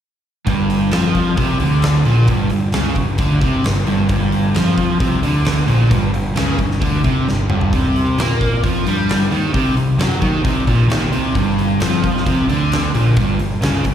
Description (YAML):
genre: blues rock power trio and southern rock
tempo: 132 BPM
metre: 4/4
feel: straight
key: unclear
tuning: A4 = 440 Hz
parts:
  - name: overdriven semi-hollow guitar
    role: riff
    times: 0.5-13.9 s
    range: G2 to Bb3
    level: -16 LUFS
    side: equal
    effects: none
  - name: fuzz picked electric bass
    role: bass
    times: 0.5-13.9 s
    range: G1 to Bb2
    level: -20 LUFS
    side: equal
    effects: overdrive
  - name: huge arena drum kit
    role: drums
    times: 0.5-13.9 s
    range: hi-hat, kick drum, snare drum, toms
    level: -21 LUFS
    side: equal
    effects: none
room: light reverb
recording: live gig heard through the venue's PA, recital hall reverb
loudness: -14 LUFS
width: side -9 dB against mid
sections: 0.5-13.9 A section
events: drum fill 7.3-7.7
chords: 0.5 G5; 7.7 C5; 11.4 G5